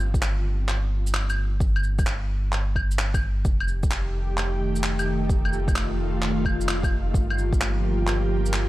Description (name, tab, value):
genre	future garage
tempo	130 BPM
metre	4/4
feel	swing 66% on 16ths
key	unclear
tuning	A4 = 440 Hz
part	soft dub sub bass	bass	0.0-8.7 s	F1 to G1	-25 LUFS	equal	sidechain pumping
part	electronic shaker, handclaps and claves	drums	0.0-8.7 s	none	-29 LUFS	equal	overdrive
part	electronic kick drum	drums	0.1-7.6 s	none	-25 LUFS	equal	overdrive
part	ethereal airy pad	sustained chords	4.0-8.7 s	Eb3 to G4	-29 LUFS	equal	ensemble chorus, built-in reverb, sidechain pumping
room	light reverb, digital ambience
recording	vinyl crackle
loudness	-22 LUFS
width	side -16 dB against mid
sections	0.0-8.7 A section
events	none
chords	0.0 N.C.; 3.5 F9; 7.1 Gm7